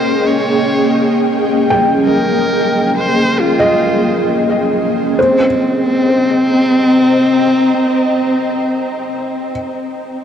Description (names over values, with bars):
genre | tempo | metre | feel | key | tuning
ambient | free time | none | none | C phrygian | A4 = 440 Hz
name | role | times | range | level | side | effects
rich electric violin | melody | 0.0-9.5 s | C4 to Db5 | -16 LUFS | equal | ping-pong delay
ethereal airy pad | sustained chords | 0.0-9.5 s | Bb3 to Bb5 | -15 LUFS | equal | ensemble chorus, built-in reverb, tremolo
wind-like tuned noise texture | texture | 0.2-5.2 s | none | barely audible | none | none
felt-muted upright piano | arpeggios | 1.7-10.2 s | C5 to G5 | -18 LUFS | equal | ping-pong delay
room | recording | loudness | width
wet huge ambient reverb, RT60 8.3 s | worn, warbling old tape, cassette tape, warbly pitch drift | -11 LUFS | side -8 dB against mid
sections
0.0-5.2 A section; 5.2-8.8 B section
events
filter sweep on ambient pad 0.0-5.2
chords
0.0 Dbadd9; 5.2 Cm7